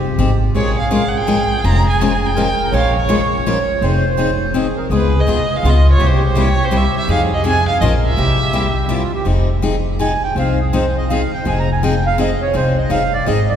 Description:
acoustic string swing (jazz manouche); 165 BPM; 3/4; swing 62% on 8ths; F minor; A4 = 441 Hz
accordion; second line; 0.0-13.6 s; F4 to Bb5; -21 LUFS; right 4 dB
upright bass; bass; 0.0-13.6 s; F1 to F2; -17 LUFS; equal
picked steel-string acoustic guitar; accompaniment; 0.2-13.4 s; C3 to Bb4; -20 LUFS; left 4 dB
rich violin; melody; 0.6-8.9 s; Cb5 to Bb5; -21 LUFS; right 2 dB
wet cathedral reverb, RT60 4.6 s; recorded in a church or concert hall; -13 LUFS; side -9 dB against mid
0.0-9.3 A section; 9.3-13.6 B section
accordion solo 9.3-13.6
0.0 Fm7; 0.5 Bbm7; 3.8 Fm7; 4.9 Db7; 6.0 C7; 7.1 Fm7; 7.8 Bbm7; 8.2 C7; 9.3 Fm7

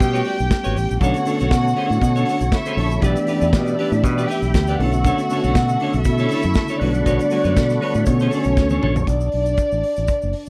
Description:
disco; 119 BPM; 4/4; straight; B minor; A4 = 437 Hz
dark chamber string section; second line; 0.0-10.5 s; C#4 to G5; -25 LUFS; equal
clean electric guitar; accompaniment; 0.0-9.0 s; D4 to E5; -29 LUFS; equal
mellow tine electric piano; accompaniment; 0.0-9.1 s; C#3 to G4; -26 LUFS; equal
fingered electric bass; bass; 0.0-10.3 s; F#1 to B2; -23 LUFS; equal
modern studio drum kit; drums; 0.0-10.5 s; hi-hat, kick drum, snare drum, toms; -23 LUFS; equal
tube shaker; percussion; 0.0-10.5 s; -46 LUFS; equal
tonewheel organ; sustained chords; 1.0-9.1 s; G4 to C#6; -32 LUFS; equal; overdrive, chorus vibrato, slow rotary speaker
studio ambience; -19 LUFS; mono
0.0-9.1 A section; 9.1-10.5 B section
drum fill 8.6-9.1
0.0 Gmaj9#11/B; 1.0 Bm9; 3.0 A9sus4/B; 4.8 Bm9; 6.8 Gmaj9#11/B; 8.1 Bm9; 9.1 Bm7

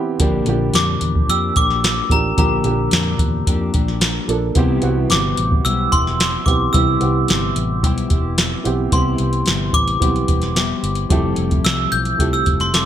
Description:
indie pop, bedroom pop; 110 BPM; 4/4; straight; A4 = 439 Hz
mellow electric guitar; accompaniment; 0.0-12.9 s; Bb2 to A4; -24 LUFS; left 6 dB; analog chorus, warbly pitch drift
warm upright piano; accompaniment; 0.0-12.9 s; E3 to A4; -24 LUFS; right 5 dB; cassette tape
vintage muted fingered electric bass; bass; 0.2-12.9 s; E1 to F2; -22 LUFS; equal
soft vintage rhythm box; drums; 0.2-12.9 s; hi-hat, kick drum, snare drum; -18 LUFS; equal; gated reverb
glockenspiel with brass mallets; melody; 0.8-12.8 s; Bb5 to G6; -22 LUFS; equal; analog chorus
light reverb; bright 1980s-style digital production; -15 LUFS; side -10 dB against mid
0.0-8.9 A section; 8.9-12.9 B section
glockenspiel solo 8.9-12.9
0.2 Bb6; 4.6 Cmaj7; 11.1 Fmaj9

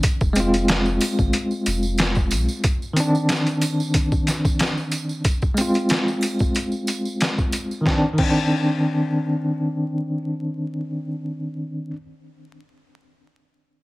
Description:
trip hop; 92 BPM; 4/4; swing 54% on 16ths; C minor; A4 = 440 Hz
bell-like tine electric piano; accompaniment; 0.0-12.0 s; Eb3 to F4; -22 LUFS; equal; tremolo, low-pass filter, tape echo
trip hop sampler-style drum kit; drums; 0.0-8.4 s; crash cymbal, hi-hat, kick drum, snare drum; -22 LUFS; equal; overdrive
tambourine and triangle; percussion; 0.0-7.8 s; -33 LUFS; right 5 dB
warm sub bass; bass; 0.2-2.5 s; F1 to B1; -24 LUFS; equal
light reverb; vinyl crackle; -19 LUFS; side -20 dB against mid
0.0-7.9 A section; 7.9-10.5 B section
filter sweep on tine electric piano 0.0-7.9
0.0 Fm; 2.6 Cmadd9; 5.2 Fm; 7.9 Cmadd9

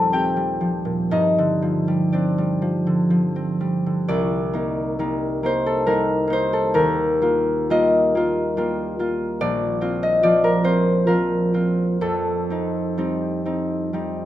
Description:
classical, solo harp piece; 55-73 BPM; 3/4; rubato; C dorian; A4 = 444 Hz
concert harp; solo; 0.0-14.3 s; Bb1 to Bb5; -18 LUFS; equal
light reverb; -18 LUFS; side -13 dB against mid
0.0-4.1 A section; 4.1-14.3 B section
0.0 Eb69; 1.1 G7sus4; 4.1 Cm9; 6.7 Ebadd9; 9.4 Bbadd9; 12.0 F9

